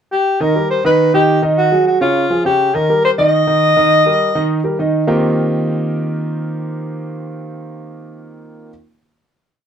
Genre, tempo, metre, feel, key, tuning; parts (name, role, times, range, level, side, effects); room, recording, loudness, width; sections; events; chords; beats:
jazz; 206 BPM; 4/4; straight; Eb major; A4 = 440 Hz
breathy alto saxophone; melody; 0.1-4.8 s; F4 to Eb5; -13 LUFS; left 2 dB
warm concert grand piano; accompaniment; 0.4-8.7 s; Db3 to Eb5; -16 LUFS; right 2 dB
wet small room reverb, RT60 0.5 s; dark, warm production; -12 LUFS; side -8 dB against mid
0.0-0.4 pickup bar; 0.4-5.1 A section; 5.1-7.4 final chord
0.4 Eb; 1.0 N.C.; 1.6 Ab5; 2.2 Db; 2.7 Eb; 5.1 Eb69
0.12 | 0.41 0.70 0.99 1.28 | 1.57 1.86 2.15 2.45 | 2.74 3.03 3.32 3.62 | 3.91 4.20 4.49 4.79 | 5.08 5.37 5.66 5.95 | 6.25 6.54 6.83 7.12